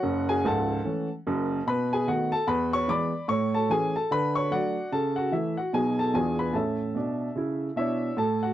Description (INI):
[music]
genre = jazz, stride piano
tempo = 148 BPM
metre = 4/4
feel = swing 61% on 8ths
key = A major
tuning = A4 = 440 Hz
[part]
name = warm baby grand piano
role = solo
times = 0.0-8.5 s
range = C#1 to D6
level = -24 LUFS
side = equal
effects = none
[sound]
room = moderate booth ambience, RT60 0.2 s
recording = dry, close 1970s-style studio recording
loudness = -24 LUFS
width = side -12 dB against mid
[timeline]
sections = 0.0-8.2 A section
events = none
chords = 0.0 F#m7; 1.7 B7; 2.5 E7; 3.3 A; 4.1 D; 4.9 A/C#; 5.7 B7; 6.1 E7b9; 6.5 A